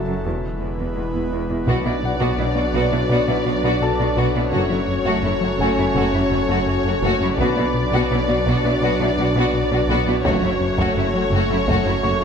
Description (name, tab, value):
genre	cinematic, hybrid orchestral and electronic film score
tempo	84 BPM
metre	4/4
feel	straight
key	unclear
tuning	A4 = 440 Hz
part	airy breathy pad	sustained chords	0.0-12.2 s	C#3 to B4	-25 LUFS	equal	chorus
part	swelling detuned saw bass	bass	0.0-12.2 s	E1 to B1	-28 LUFS	equal	none
part	bright concert grand piano	texture	0.0-12.2 s	E4 to C#6	-32 LUFS	equal	digital delay
part	clear chamber cello section	bass	0.1-12.2 s	E2 to B2	-26 LUFS	right 4 dB	none
part	warm symphonic violin section	melody	1.7-12.2 s	C#5 to D5	-24 LUFS	left 2 dB	none
part	rich symphonic violin section	second line	1.7-12.2 s	E4 to F#4	-26 LUFS	left 2 dB	none
part	warm symphonic viola section	accompaniment	1.7-12.2 s	A3 to B3	-28 LUFS	right 1 dB	none
part	mellow French horn section	sustained chords	1.7-12.2 s	F#3 to D4	-28 LUFS	left 4 dB	none
part	rubbery square bass	riff	1.7-12.2 s	F#2 to B3	-26 LUFS	left 3 dB	none
part	rich studio double bass section	bass	1.7-12.1 s	F#1 to B1	-28 LUFS	right 4 dB	none
part	taiko ensemble	drums	1.7-3.1, 7.4-12.2 s	none	-28 LUFS	equal	none
room	moderate scoring stage reverb, RT60 1.9 s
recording	none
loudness	-17 LUFS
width	side -7 dB against mid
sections	0.0-1.7 A section; 1.7-12.2 B section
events	build-up 0.0-1.7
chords	0.2 E; 1.7 Bm; 4.5 F#m; 7.4 Bm; 10.2 F#m